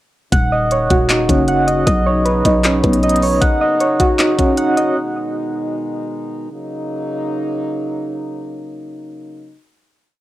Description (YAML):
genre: hip hop, trap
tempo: 155 BPM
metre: 4/4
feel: half-time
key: Eb minor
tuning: A4 = 436 Hz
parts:
  - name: warm brass ensemble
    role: sustained chords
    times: 0.3-9.6 s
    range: Cb3 to Eb4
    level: -23 LUFS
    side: equal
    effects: stereo widening, cassette tape
  - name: soft electric-piano-like synth keys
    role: arpeggios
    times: 0.3-5.0 s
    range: B3 to Gb5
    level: -15 LUFS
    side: right 1 dB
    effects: chorus, tremolo, cassette tape, analog delay
  - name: growling 808-style bass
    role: bass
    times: 0.3-3.4 s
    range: Eb1 to B1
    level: -18 LUFS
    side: left 1 dB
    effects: none
  - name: trap drum kit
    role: drums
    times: 0.3-4.9 s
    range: handclaps, hi-hat, kick drum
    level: -18 LUFS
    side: left 1 dB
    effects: none
room: light reverb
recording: home recording on cassette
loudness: -14 LUFS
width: side -15 dB against mid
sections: 0.3-6.5 hook; 6.5-9.6 final chord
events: none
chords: 0.3 Ebm7; 1.9 Badd9; 3.4 Ebm7; 5.0 Abm; 6.5 Ebm7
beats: | 0.32 0.71 1.09 1.48 | 1.87 2.26 2.64 3.03 | 3.42 3.81 4.19 4.58 | 4.97 5.35 5.74 6.13 | 6.51 6.90 7.29 7.68 | 8.06 8.45 8.84 9.22